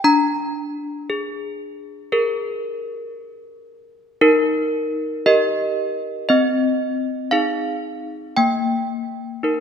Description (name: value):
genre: classical, tune for handbells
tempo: 57 BPM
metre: 4/4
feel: straight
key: Eb major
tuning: A4 = 440 Hz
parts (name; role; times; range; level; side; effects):
- desk bells; solo; 0.0-9.6 s; Bb3 to Bb5; -18 LUFS; equal; none
room: moderate concert hall reverb, RT60 2.1 s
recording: none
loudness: -18 LUFS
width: side -7 dB against mid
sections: 0.0-9.6 A section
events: none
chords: 0.0 Bb7/D; 4.2 Eb; 6.3 Ab/C; 8.4 Eb/Bb